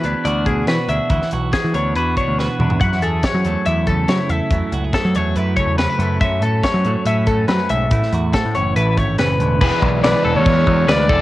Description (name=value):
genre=math rock and midwest emo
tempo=141 BPM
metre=4/4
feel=straight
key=unclear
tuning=A4 = 440 Hz
part: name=twelve-string electric guitar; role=accompaniment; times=0.0-11.2 s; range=F#2 to A4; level=-22 LUFS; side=right 4 dB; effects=cassette tape
part: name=twelve-string electric guitar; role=arpeggios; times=0.0-11.2 s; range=G#4 to F#5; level=-21 LUFS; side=left 3 dB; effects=cassette tape, tape echo
part: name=growling picked electric bass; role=bass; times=0.0-11.2 s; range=E1 to F#3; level=-20 LUFS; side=equal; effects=overdrive
part: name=crisp fusion drum kit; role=drums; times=0.0-11.2 s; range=crash cymbal, hi-hat, kick drum, snare drum, toms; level=-22 LUFS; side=equal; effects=cassette tape
part: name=overdriven electric guitar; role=riff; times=9.6-11.2 s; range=E3 to D5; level=-21 LUFS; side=equal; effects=cassette tape
part: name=warm trumpet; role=melody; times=10.0-11.2 s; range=B4 to D5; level=-18 LUFS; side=left 1 dB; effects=none
room=little or no reverb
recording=home recording on cassette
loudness=-15 LUFS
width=side -16 dB against mid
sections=0.0-9.6 A section; 9.6-11.2 B section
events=drum fill 2.4-2.8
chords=0.0 E9; 2.8 F#m9; 6.2 B9sus4/F#; 7.9 A69; 9.6 E7sus4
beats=0.25 0.68 | 1.10 1.53 1.96 2.38 | 2.81 3.23 3.66 4.08 | 4.51 4.94 5.36 5.79 | 6.21 6.64 7.06 7.49 | 7.92 8.34 8.76 9.19 | 9.61 10.04 10.46 10.88